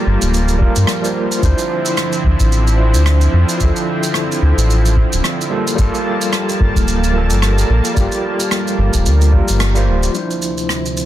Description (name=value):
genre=sunset chillout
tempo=110 BPM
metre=4/4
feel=swing 57% on 16ths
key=D minor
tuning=A4 = 436 Hz
part: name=overdriven tine electric piano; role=accompaniment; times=0.0-11.1 s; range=F3 to C5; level=-20 LUFS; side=equal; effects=fast tremolo, auto-pan, vintage 12-bit sampler grit, ping-pong delay
part: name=lush unison pad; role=sustained chords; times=0.0-11.1 s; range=D2 to A5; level=-21 LUFS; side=right 1 dB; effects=chorus, vintage 12-bit sampler grit
part: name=round analog bass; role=bass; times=0.1-10.1 s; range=D1 to G2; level=-13 LUFS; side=equal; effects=none
part: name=shaker and rim click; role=drums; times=0.2-11.1 s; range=none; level=-23 LUFS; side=right 1 dB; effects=none
part: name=electronic kick drum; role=drums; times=0.6-9.5 s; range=none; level=-16 LUFS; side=equal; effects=overdrive
room=light reverb, studio ambience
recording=dense, heavily limited modern master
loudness=-13 LUFS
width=side -13 dB against mid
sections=0.0-10.2 A section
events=band accent 9.6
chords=0.0 Gm9; 1.4 Dm9; 5.5 Gm9; 10.2 Dm9